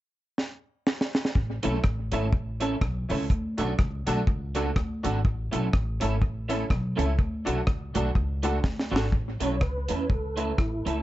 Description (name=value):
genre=ska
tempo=124 BPM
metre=4/4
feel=swing 58% on 8ths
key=A major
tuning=A4 = 441 Hz
part: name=deep reggae drum kit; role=drums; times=0.4-11.0 s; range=hi-hat, kick drum, rim click, snare drum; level=-27 LUFS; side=equal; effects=analog delay
part: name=upright bass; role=bass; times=1.4-11.0 s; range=G#1 to E2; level=-29 LUFS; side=equal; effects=none
part: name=electric guitar through a small old amp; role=accompaniment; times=1.6-11.0 s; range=A3 to A4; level=-31 LUFS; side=right 3 dB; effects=ensemble chorus, analog delay
part: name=honky-tonk upright piano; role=stabs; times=1.6-9.0 s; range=C#4 to A4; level=-33 LUFS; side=left 1 dB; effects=analog delay
part: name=mellow tonewheel organ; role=melody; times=9.4-11.0 s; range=E4 to C#5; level=-32 LUFS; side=equal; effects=chorus vibrato, stopped rotary speaker, analog delay, plate reverb
room=light reverb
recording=nothing above 7.9 kHz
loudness=-25 LUFS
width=side -15 dB against mid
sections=0.0-1.4 A section; 1.4-9.1 B section; 9.1-11.0 C section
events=drum fill 0.4-1.4, 8.6-9.1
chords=0.0 N.C.; 1.4 A; 3.3 D; 5.2 A; 7.2 D; 9.1 A